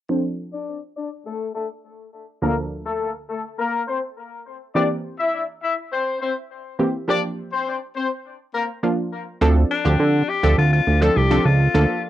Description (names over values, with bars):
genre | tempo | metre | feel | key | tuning
pop | 103 BPM | 4/4 | straight | D minor | A4 = 441 Hz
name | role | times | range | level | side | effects
clear horn section | melody | 0.1-8.7 s | A3 to E5 | -24 LUFS | left 4 dB | low-pass filter, cassette tape, analog delay
analog pluck | accompaniment | 0.1-12.0 s | D2 to A4 | -22 LUFS | right 2 dB | chorus, low-pass filter, cassette tape
fat analog bass | bass | 9.4-11.9 s | C2 to D3 | -16 LUFS | right 1 dB | none
bright alto saxophone | melody | 9.7-12.0 s | D4 to A4 | -22 LUFS | left 6 dB | cassette tape
room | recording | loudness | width
light reverb | home recording on cassette | -19 LUFS | side -13 dB against mid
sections
0.1-9.4 A section; 9.4-12.1 B section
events
filter sweep 0.1-9.4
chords
0.1 Dm7; 2.4 Bbmaj7/D; 4.8 C7; 7.1 Gm7; 9.4 Dm7